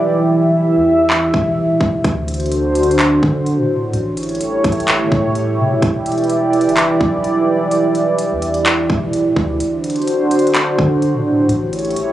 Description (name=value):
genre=hip hop, atmospheric cloud-rap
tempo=127 BPM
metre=4/4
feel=half-time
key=E minor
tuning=A4 = 441 Hz
part: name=dark analog pad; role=sustained chords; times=0.0-12.1 s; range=D3 to E5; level=-15 LUFS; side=right 1 dB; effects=chorus, sidechain pumping
part: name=long sustained 808-style bass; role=bass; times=0.0-11.9 s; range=D1 to D3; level=-22 LUFS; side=equal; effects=none
part: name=trap drum kit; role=drums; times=1.1-12.1 s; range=handclaps, hi-hat, kick drum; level=-18 LUFS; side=equal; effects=none
room=little or no reverb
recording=recorded on a phone in the room, club reverb, compression, nothing above 10.9 kHz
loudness=-13 LUFS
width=side -13 dB against mid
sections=0.0-12.1 A section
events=break 0.0-2.0; kick muted 9.6-10.5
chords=0.0 Em7; 2.0 D7; 3.9 A7; 5.8 Em7; 9.6 D7; 11.5 A7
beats=| 0.15 0.63 1.10 1.57 | 2.04 2.52 2.99 3.46 | 3.93 4.41 4.88 5.35 | 5.82 6.30 6.77 7.24 | 7.71 8.19 8.66 9.13 | 9.60 10.08 10.55 11.02 | 11.49 11.97